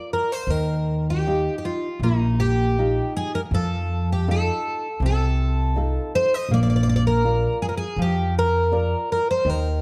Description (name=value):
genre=fado-style ballad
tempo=80 BPM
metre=4/4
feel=rubato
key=unclear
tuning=A4 = 438 Hz
part: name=fingerpicked twelve-string acoustic guitar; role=melody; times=0.0-9.8 s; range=Eb4 to Eb5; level=-26 LUFS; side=equal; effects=slapback echo
part: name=nylon-string guitar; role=accompaniment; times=0.0-9.8 s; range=C3 to D5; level=-29 LUFS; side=equal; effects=none
part: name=upright bass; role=bass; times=0.5-9.8 s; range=Bb1 to F2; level=-25 LUFS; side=equal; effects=none
room=light reverb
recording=dark, warm production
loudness=-22 LUFS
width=mono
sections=0.0-9.8 A section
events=none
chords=0.5 Ebadd9; 3.5 F7; 6.5 Bb